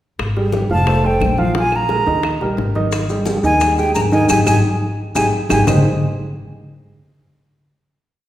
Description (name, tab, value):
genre	Afro-Cuban jazz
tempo	175 BPM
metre	4/4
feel	straight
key	Ab major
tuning	A4 = 439 Hz
part	upright bass	bass	0.2-5.8 s	F1 to Eb2	-20 LUFS	equal	none
part	bongos	percussion	0.2-5.8 s	none	-26 LUFS	left 4 dB	none
part	claves	percussion	0.2-5.8 s	none	-29 LUFS	right 3 dB	none
part	congas	percussion	0.2-5.8 s	none	-23 LUFS	left 1 dB	none
part	warm baby grand piano	accompaniment	0.4-5.8 s	Eb3 to F5	-19 LUFS	right 1 dB	none
part	breathy silver concert flute	melody	0.7-5.6 s	F5 to Bb5	-19 LUFS	equal	none
part	maracas	percussion	2.9-5.8 s	none	-29 LUFS	left 4 dB	none
room	wet recital hall reverb, RT60 1.6 s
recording	recorded in a church or concert hall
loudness	-14 LUFS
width	side -13 dB against mid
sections	0.2-5.7 A section; 5.7-7.1 final chord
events	band accent 4.3-5.7; drum fill 5.2-5.7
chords	0.2 Fmadd9; 0.9 F; 1.6 Bb5; 2.2 Eb; 2.9 Ab5; 5.7 Abmaj7